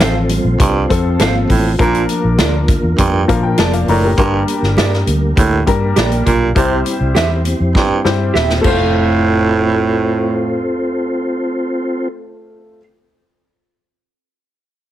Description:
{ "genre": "uptempo 1960s-style soul", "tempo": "101 BPM", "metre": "4/4", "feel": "straight", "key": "F major", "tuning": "A4 = 440 Hz", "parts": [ { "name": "warm upright piano", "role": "accompaniment", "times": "0.0-12.8 s", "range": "F3 to Bb5", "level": "-19 LUFS", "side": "left 4 dB", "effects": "plate reverb" }, { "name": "mellow tonewheel organ", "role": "sustained chords", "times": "0.0-12.1 s", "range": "Bb3 to C5", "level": "-21 LUFS", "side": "equal", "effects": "chorus vibrato, stopped rotary speaker, plate reverb" }, { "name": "electric guitar through a small old amp", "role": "stabs", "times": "0.0-12.8 s", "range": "F4 to F5", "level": "-22 LUFS", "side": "right 5 dB", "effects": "plate reverb" }, { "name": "vintage muted fingered electric bass", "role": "bass", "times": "0.0-12.8 s", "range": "Eb1 to Bb2", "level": "-18 LUFS", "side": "equal", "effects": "none" }, { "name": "natural country drum kit", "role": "drums", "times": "0.0-8.8 s", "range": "crash cymbal, hi-hat, kick drum, snare drum", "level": "-17 LUFS", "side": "equal", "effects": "none" }, { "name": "congas", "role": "percussion", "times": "0.0-9.2 s", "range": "none", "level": "-26 LUFS", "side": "right 5 dB", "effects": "none" }, { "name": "growling baritone saxophone", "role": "riff", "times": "0.6-10.7 s", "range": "G2 to C3", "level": "-16 LUFS", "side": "right 4 dB", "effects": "none" } ], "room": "light reverb", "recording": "heavily compressed radio sound, multiband compression", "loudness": "-12 LUFS", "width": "side -12 dB against mid", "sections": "0.0-8.9 A section; 8.9-11.3 B section", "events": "upright piano fill 3.0-4.2, 7.8-8.9; drum fill 7.8-8.9", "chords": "0.0 F; 1.8 Bb; 4.2 Gm; 6.6 C; 8.6 F" }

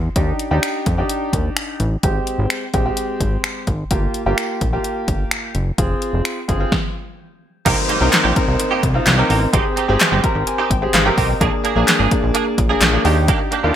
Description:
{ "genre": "dance-pop", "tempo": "128 BPM", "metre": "4/4", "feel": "straight", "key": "Eb major", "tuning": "A4 = 435 Hz", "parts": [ { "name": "fat analog bass", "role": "bass", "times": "0.0-13.7 s", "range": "F1 to F2", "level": "-19 LUFS", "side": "equal", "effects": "sidechain pumping" }, { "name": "clear baby grand piano", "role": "accompaniment", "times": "0.2-13.8 s", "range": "Ab3 to Bb5", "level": "-21 LUFS", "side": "equal", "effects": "lush chorus, sidechain pumping" }, { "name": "punchy analog drum machine", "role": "drums", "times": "0.2-13.6 s", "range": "crash cymbal, finger snaps, handclaps, hi-hat, kick drum, snare drum", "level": "-19 LUFS", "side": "equal", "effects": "overdrive, gated reverb" }, { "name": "direct-recorded clean electric guitar", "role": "riff", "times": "7.7-13.7 s", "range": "Bb3 to Ab4", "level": "-22 LUFS", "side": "right 7 dB", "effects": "ensemble chorus" }, { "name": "downlifter", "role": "sound effects", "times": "7.7-11.4 s", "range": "none", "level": "-27 LUFS", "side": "left 2 dB", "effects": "none" }, { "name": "group handclap", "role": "percussion", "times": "8.1-12.9 s", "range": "none", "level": "-26 LUFS", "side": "left 6 dB", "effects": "none" } ], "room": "light reverb, digital ambience", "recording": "bright 1980s-style digital production", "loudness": "-15 LUFS", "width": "side -10 dB against mid", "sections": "0.0-7.7 A section; 7.7-13.8 B section", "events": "stop 6.7-7.7; grand piano fill 10.0-11.4", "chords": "0.2 Ebmaj7; 2.0 Abmaj7; 3.9 Gm7; 5.8 Fm; 7.7 Cm7; 9.5 Abmaj7; 11.4 Bb7; 13.1 Ebmaj7" }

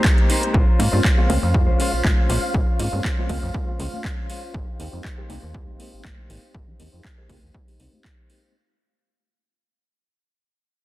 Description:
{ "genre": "filtered disco house", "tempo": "120 BPM", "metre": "4/4", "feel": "swing 54% on 16ths", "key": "unclear", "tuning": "A4 = 442 Hz", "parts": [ { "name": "barky reed electric piano", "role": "accompaniment", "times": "0.0-8.5 s", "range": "Ab3 to C5", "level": "-29 LUFS", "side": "equal", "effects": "overdrive, fast tremolo, phaser, vintage 12-bit sampler grit, sidechain pumping, low-pass filter" }, { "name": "string machine, full ensemble", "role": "sustained chords", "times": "0.0-8.6 s", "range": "F5 to Bb5", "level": "-33 LUFS", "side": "equal", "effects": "ensemble chorus, sidechain pumping, low-pass filter" }, { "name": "direct-recorded clean electric guitar", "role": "riff", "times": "0.0-8.6 s", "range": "Ab3 to C5", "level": "-30 LUFS", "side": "left 2 dB", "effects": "sidechain pumping, low-pass filter" }, { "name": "electronic kick drum", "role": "drums", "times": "0.0-8.2 s", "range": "none", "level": "-20 LUFS", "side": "equal", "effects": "overdrive" }, { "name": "house drum kit", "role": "drums", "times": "0.0-8.4 s", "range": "handclaps, hi-hat", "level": "-28 LUFS", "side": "equal", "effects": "overdrive, sidechain pumping on hats, sidechain pumping on cymbals" }, { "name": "tambourine and congas", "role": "percussion", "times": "0.0-8.5 s", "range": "none", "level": "-33 LUFS", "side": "left 3 dB", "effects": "none" }, { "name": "slap-like FM bass", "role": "bass", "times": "0.5-7.9 s", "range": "Ab1 to Ab2", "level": "-24 LUFS", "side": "equal", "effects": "tube saturation, sidechain pumping, low-pass filter" } ], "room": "little or no reverb", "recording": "dense, heavily limited modern master", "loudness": "-18 LUFS", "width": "side -16 dB against mid", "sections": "0.0-8.5 A section", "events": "fade-out 0.0-8.5; filter sweep 0.0-8.5", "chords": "0.0 Abmaj9; 0.5 Bbm9; 4.5 Abmaj9" }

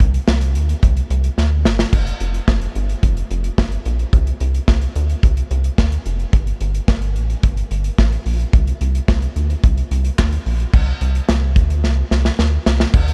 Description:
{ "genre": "synth-pop", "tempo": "109 BPM", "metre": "4/4", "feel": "straight", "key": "unclear", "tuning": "A4 = 443 Hz", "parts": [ { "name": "rubbery square bass", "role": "bass", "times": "0.0-13.1 s", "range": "F1 to D2", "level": "-20 LUFS", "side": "equal", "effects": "none" }, { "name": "modern studio drum kit", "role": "drums", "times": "0.0-13.1 s", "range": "crash cymbal, handclaps, hi-hat, kick drum, snare drum", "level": "-20 LUFS", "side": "equal", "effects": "none" } ], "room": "little or no reverb", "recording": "none", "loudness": "-18 LUFS", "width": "mono", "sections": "0.0-1.9 A section; 1.9-10.7 B section; 10.7-12.9 C section", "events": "drum fill 1.4-1.9, 11.8-12.9", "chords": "none" }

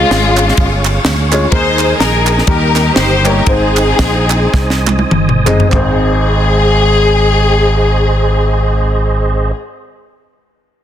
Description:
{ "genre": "uptempo gospel", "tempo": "95-127 BPM", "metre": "4/4", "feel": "swing 58% on 8ths", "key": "Ab major", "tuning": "A4 = 440 Hz", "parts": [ { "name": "warm studio string section", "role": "melody", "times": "0.0-9.5 s", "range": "Ab3 to C5", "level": "-14 LUFS", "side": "left 3 dB", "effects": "none" }, { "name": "warm upright piano", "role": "accompaniment", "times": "0.0-9.5 s", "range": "Ab1 to Eb5", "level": "-18 LUFS", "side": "left 2 dB", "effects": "none" }, { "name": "tonewheel organ", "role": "sustained chords", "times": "0.0-9.5 s", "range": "Ab4 to Eb6", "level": "-21 LUFS", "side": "right 4 dB", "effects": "slow rotary speaker, chorus vibrato" }, { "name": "fingered electric bass", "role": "bass", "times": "0.0-9.5 s", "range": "G1 to Eb2", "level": "-14 LUFS", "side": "equal", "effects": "none" }, { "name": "tight funk drum kit", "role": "drums", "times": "0.1-5.9 s", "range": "kick drum, ride cymbal, snare drum, toms", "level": "-15 LUFS", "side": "equal", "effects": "none" }, { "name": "group handclap", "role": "percussion", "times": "0.4-6.1 s", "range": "none", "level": "-20 LUFS", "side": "right 8 dB", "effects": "none" } ], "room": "small room ambience", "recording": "dense, heavily limited modern master", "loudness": "-9 LUFS", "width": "side -10 dB against mid", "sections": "0.0-5.7 A section; 5.7-10.8 B section", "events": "slowing down 1.5-5.7; drum fill 4.5-5.7", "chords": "0.0 Db; 1.5 Ebsus4; 2.5 Eb; 3.5 Ab" }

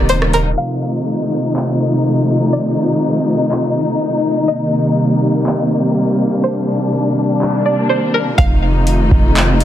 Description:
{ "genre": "hip hop, atmospheric cloud-rap", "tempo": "123 BPM", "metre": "4/4", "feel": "half-time", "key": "unclear", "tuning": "A4 = 440 Hz", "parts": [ { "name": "string-like resonator pluck", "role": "melody", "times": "0.0-8.8 s", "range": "Bb4 to F5", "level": "-20 LUFS", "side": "right 1 dB", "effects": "chorus, phaser, low-pass filter, tape echo" }, { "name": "warm symphonic string section", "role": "sustained chords", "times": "0.0-9.6 s", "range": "C3 to Eb4", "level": "-14 LUFS", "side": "left 1 dB", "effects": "sidechain pumping" }, { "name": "clean 808-style bass", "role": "bass", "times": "0.0-0.5, 8.4-9.6 s", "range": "Eb1 to F1", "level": "-15 LUFS", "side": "equal", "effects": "none" }, { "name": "booming analog drum machine", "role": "drums", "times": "0.1-9.6 s", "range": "handclaps, hi-hat, kick drum, rim click", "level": "-17 LUFS", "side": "equal", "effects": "none" } ], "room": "light reverb", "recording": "heavily compressed radio sound, low-pass filter", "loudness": "-13 LUFS", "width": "side -11 dB against mid", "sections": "0.6-8.4 A section; 8.4-9.6 B section", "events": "filter sweep 0.6-8.4; kick muted 7.4-8.4", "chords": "0.0 Eb6; 0.6 F7; 4.5 Cm7; 8.4 F7" }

